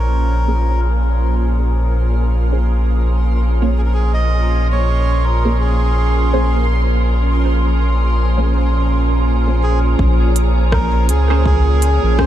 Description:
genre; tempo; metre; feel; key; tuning
ambient dub; 82 BPM; 4/4; swing 58% on 16ths; Bb minor; A4 = 441 Hz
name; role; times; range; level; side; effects
melodica; melody; 0.0-12.3 s; Ab4 to Eb5; -24 LUFS; right 1 dB; dub echo
soft additive organ-like pad; sustained chords; 0.0-12.3 s; Bb2 to Bb4; -22 LUFS; right 1 dB; ensemble chorus, built-in reverb
round analog bass; bass; 0.0-12.3 s; Bb1 to Db2; -15 LUFS; equal; none
bubbling stepped-filter texture; texture; 0.8-12.3 s; C6; -29 LUFS; right 2 dB; chorus, built-in reverb
filtered dub chord stab; stabs; 0.5-12.3 s; Bb3 to Db5; -26 LUFS; right 2 dB; phaser, analog chorus, dub echo
electronic kick drum; drums; 10.0-12.3 s; none; -18 LUFS; equal; overdrive
organic electronic drum kit; drums; 10.4-12.3 s; hi-hat, rim click; -27 LUFS; equal; overdrive, dub echo
room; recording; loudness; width
light reverb; none; -13 LUFS; side -12 dB against mid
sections
0.0-10.0 A section; 10.0-12.3 B section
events
none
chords
0.0 Bbm9

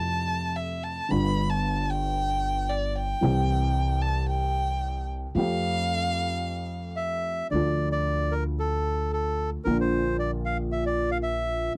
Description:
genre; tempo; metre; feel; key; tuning
tango; 112 BPM; 4/4; rubato; F major, D minor from 7.5 s; A4 = 440 Hz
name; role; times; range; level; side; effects
warm violin; second line; 0.0-6.9 s; D5 to B5; -32 LUFS; equal; none
dark upright piano; accompaniment; 0.0-11.8 s; G1 to G4; -32 LUFS; equal; none
upright bass; bass; 0.0-11.7 s; G1 to F2; -32 LUFS; equal; none
bandoneon; melody; 7.0-11.7 s; A4 to F5; -31 LUFS; equal; none
room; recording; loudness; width
little or no reverb; dry, close 1970s-style studio recording; -27 LUFS; mono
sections
0.0-7.5 A section; 7.5-11.8 B section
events
violin solo 0.0-7.5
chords
0.0 Fmaj7; 1.1 G7; 3.2 C; 5.4 Fadd9; 7.5 Dm; 9.7 Bb

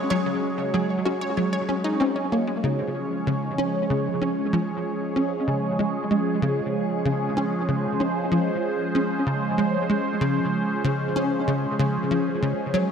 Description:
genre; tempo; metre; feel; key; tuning
ambient, sequencer-driven space music; 95 BPM; 4/4; straight; Db major; A4 = 441 Hz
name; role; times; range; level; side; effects
phased analog pad; sustained chords; 0.0-12.9 s; F3 to Db5; -25 LUFS; right 1 dB; phaser, chorus, shimmer reverb
wide unison pluck; arpeggios; 0.0-2.5 s; Db3 to Db5; -30 LUFS; moving between left 2 dB and right 4 dB; auto-pan, analog delay, shimmer reverb
tight sequencer bass; riff; 0.1-12.9 s; Db3 to Gb4; -25 LUFS; equal; ensemble chorus, analog delay, shimmer reverb
room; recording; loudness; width
moderate plate reverb, RT60 2.7 s; none; -22 LUFS; side -7 dB against mid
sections
0.0-2.6 A section; 2.6-12.9 B section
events
filter sweep on analog synth bass 0.0-2.6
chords
0.0 Gbsus2; 2.6 Db

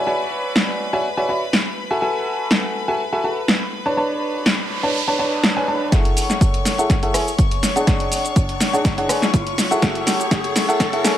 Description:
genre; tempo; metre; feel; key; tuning
piano house; 123 BPM; 4/4; swing 53% on 16ths; F# minor; A4 = 445 Hz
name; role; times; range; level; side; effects
rich chamber string section; sustained chords; 0.0-11.2 s; B4 to C#6; -27 LUFS; left 2 dB; sidechain pumping
clear upright piano; riff; 0.0-11.2 s; D4 to B5; -21 LUFS; equal; vintage 12-bit sampler grit, sidechain pumping, low-pass filter, tape echo
punchy analog drum machine; drums; 0.6-11.2 s; cabasa, hi-hat, rim click, snare drum; -20 LUFS; equal; none
noise sweep and riser; sound effects; 4.2-11.2 s; none; -29 LUFS; right 1 dB; none
electronic kick drum; drums; 5.9-10.9 s; none; -19 LUFS; equal; none
room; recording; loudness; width
light reverb, digital ambience; high-pass filter; -17 LUFS; side -11 dB against mid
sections
0.0-5.9 A section; 5.9-11.2 B section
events
noise sweep 4.2-5.9; build-up 5.9-11.2; drum fill 5.9-11.2; riser 5.9-11.2; filter sweep on upright piano 5.9-11.2; filter sweep 5.9-11.2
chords
0.0 E13; 1.8 F#m9; 3.7 Bm9; 5.9 F#m9; 7.6 Dmaj7#11; 9.6 F#m9

